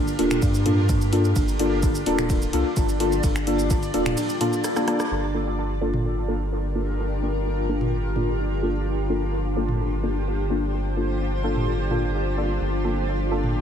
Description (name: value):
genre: dub techno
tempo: 128 BPM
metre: 4/4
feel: straight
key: G minor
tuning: A4 = 445 Hz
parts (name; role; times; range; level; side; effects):
- granular cloud pad; sustained chords; 0.0-13.6 s; D4 to D5; -28 LUFS; left 1 dB; built-in reverb, wide subtle chorus, sidechain pumping
- round analog bass; bass; 0.0-13.6 s; D1 to G2; -26 LUFS; equal; sidechain pumping
- deep house drum kit; drums; 0.1-5.1 s; finger snaps, hi-hat, ride cymbal, rim click, shaker; -32 LUFS; right 1 dB; dub echo
- deep mellow chord stab; stabs; 0.2-13.5 s; Bb3 to A4; -25 LUFS; left 1 dB; chorus, phaser, sidechain pumping, dub echo
- electronic toms and woodblock; percussion; 0.3-13.5 s; none; -31 LUFS; right 1 dB; overdrive, sidechain pumping on toms, sidechain pumping on perc
- electronic kick drum; drums; 0.4-3.8 s; none; -24 LUFS; equal; none
room: moderate plate reverb, RT60 1.3 s, digital ambience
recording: dreamy mix soaked in reverb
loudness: -21 LUFS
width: side -8 dB against mid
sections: 0.0-5.1 A section; 5.1-13.6 B section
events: drum fill 4.6-5.1; band accent 5.0; filter sweep on synth stab 5.1-13.6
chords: 0.0 Gm7